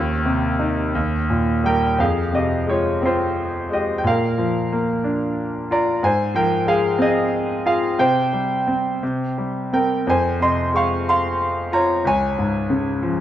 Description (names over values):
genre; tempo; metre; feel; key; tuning
classical, lyrical solo piano; 60 BPM (dotted quarters); 6/8; uneven beats, rubato; F minor; A4 = 436 Hz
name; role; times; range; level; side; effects
bright concert grand piano; solo; 0.0-13.2 s; Db2 to Db6; -18 LUFS; equal; none
room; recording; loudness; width
moderate scoring stage reverb, RT60 1.8 s; dark, warm production; -18 LUFS; side -11 dB against mid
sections
0.0-2.0 A section; 2.0-13.2 B section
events
none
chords
0.0 Bbmadd11/Eb; 1.0 Eb; 2.0 Fmadd9; 4.1 Bb; 6.0 Fm/Ab; 8.0 C5; 10.1 Fm; 12.1 Db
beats
0.96 | 2.00 3.03 | 4.05 5.04 | 6.02 7.00 | 7.99 9.02 | 10.07 11.07 | 12.05 13.01